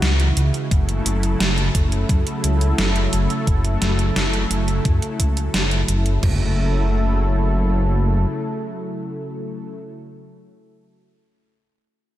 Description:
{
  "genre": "synthwave",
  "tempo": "87 BPM",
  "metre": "4/4",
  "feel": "straight",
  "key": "F# minor",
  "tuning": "A4 = 440 Hz",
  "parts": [
    { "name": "warm analog pad", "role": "sustained chords", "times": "0.0-9.7 s", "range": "C#3 to A4", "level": "-24 LUFS", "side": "equal", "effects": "chorus, sidechain pumping" },
    { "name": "dark detuned saw bass", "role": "bass", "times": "0.0-8.3 s", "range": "F#1 to F#2", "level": "-20 LUFS", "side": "equal", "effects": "sidechain pumping" },
    { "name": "gated 80s digital drum machine", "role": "drums", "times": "0.0-6.2 s", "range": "hi-hat, snare drum", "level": "-23 LUFS", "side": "right 1 dB", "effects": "gated reverb, gated reverb snare, overdrive" },
    { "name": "gated 80s digital drum machine", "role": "drums", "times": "0.7-6.4 s", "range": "crash cymbal, kick drum, toms", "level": "-20 LUFS", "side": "equal", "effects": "gated reverb, overdrive" }
  ],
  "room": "little or no reverb",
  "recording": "none",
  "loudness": "-17 LUFS",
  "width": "side -13 dB against mid",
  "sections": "0.0-6.2 A section; 6.2-9.0 B section",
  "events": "none",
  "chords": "0.0 C#m; 0.7 F#m7",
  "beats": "0.02 | 0.71 1.40 2.09 2.78 | 3.47 4.16 4.85 5.54 | 6.23 6.92 7.61 8.30"
}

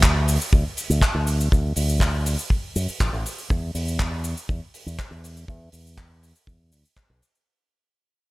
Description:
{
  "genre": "nu-disco, nu disco",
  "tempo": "121 BPM",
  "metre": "4/4",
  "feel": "straight",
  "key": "unclear",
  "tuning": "A4 = 441 Hz",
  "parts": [
    { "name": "fingered electric bass with an envelope filter", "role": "bass", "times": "0.0-7.2 s", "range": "A1 to F#2", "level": "-23 LUFS", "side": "equal", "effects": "none" },
    { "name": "damped 70s drum kit", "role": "drums", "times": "0.0-7.4 s", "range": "cabasa, handclaps, hi-hat", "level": "-27 LUFS", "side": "equal", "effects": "studio reverb" },
    { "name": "kick drum", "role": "drums", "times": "0.0-7.1 s", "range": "none", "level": "-20 LUFS", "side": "equal", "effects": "studio reverb" }
  ],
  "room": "little or no reverb",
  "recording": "none",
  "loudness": "-21 LUFS",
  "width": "side -21 dB against mid",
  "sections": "0.0-7.5 A section",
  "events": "fade-out 0.0-7.5",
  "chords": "none",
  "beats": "0.03 0.52 1.02 | 1.51 2.01 2.50 3.00 | 3.50 3.99 4.49 4.99 | 5.48 5.98 6.47 6.97"
}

